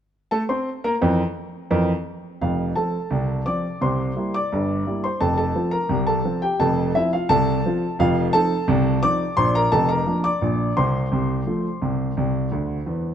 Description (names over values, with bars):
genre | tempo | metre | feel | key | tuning
ragtime piano | 86 BPM | 2/4 | straight | F major | A4 = 440 Hz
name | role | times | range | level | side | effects
warm baby grand piano | solo | 0.3-13.1 s | F1 to D6 | -19 LUFS | equal | none
room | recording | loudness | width
moderate plate reverb, RT60 2.6 s | minimal, uncompressed stereo recording | -19 LUFS | side -9 dB against mid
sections
0.0-2.4 A section; 2.4-13.1 B section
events
grand piano fill 12.5-13.1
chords
0.0 Am; 1.0 C7/F; 2.4 F; 3.8 C7; 5.2 F; 8.0 F7; 9.4 Bb; 10.8 F/C; 12.2 C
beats
0.31 | 1.01 1.71 | 2.41 3.11 | 3.81 4.50 | 5.20 5.90 | 6.60 7.29 | 7.98 8.68 | 9.38 10.07 | 10.77 11.47 | 12.17 12.87